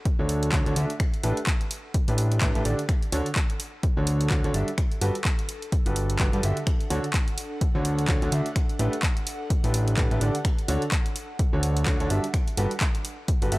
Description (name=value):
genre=piano house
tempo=127 BPM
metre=4/4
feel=swing 58% on 16ths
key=D major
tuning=A4 = 439 Hz
part: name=airy breathy pad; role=texture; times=0.0-13.6 s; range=D4 to F#5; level=-40 LUFS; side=equal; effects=chorus, sidechain pumping
part: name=electronic kick drum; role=drums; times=0.1-13.4 s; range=none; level=-24 LUFS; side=equal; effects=none
part: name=punchy analog drum machine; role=drums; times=0.1-13.6 s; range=finger snaps, handclaps, hi-hat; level=-32 LUFS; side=equal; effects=none
part: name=warm concert grand piano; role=riff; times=0.2-13.6 s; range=D3 to E5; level=-29 LUFS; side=right 1 dB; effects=sidechain pumping
part: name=fat analog bass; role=bass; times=0.2-13.6 s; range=G1 to G2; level=-25 LUFS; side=equal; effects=sidechain pumping
room=little or no reverb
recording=dry, gritty hardware recording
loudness=-22 LUFS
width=side -20 dB against mid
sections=0.0-13.6 A section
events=fade-in on analog synth pad 0.0-13.6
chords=0.0 Dmaj7; 1.0 A9sus4; 2.9 Dmaj7; 4.8 Gmaj9; 6.7 Dmaj7; 8.6 A9sus4; 10.4 Dmaj7; 12.3 Gmaj9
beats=0.05 0.53 | 1.00 1.47 1.94 2.42 | 2.89 3.36 3.83 4.31 | 4.78 5.25 5.72 6.20 | 6.67 7.14 7.61 8.09 | 8.56 9.03 9.50 9.98 | 10.45 10.92 11.39 11.87 | 12.34 12.81 13.28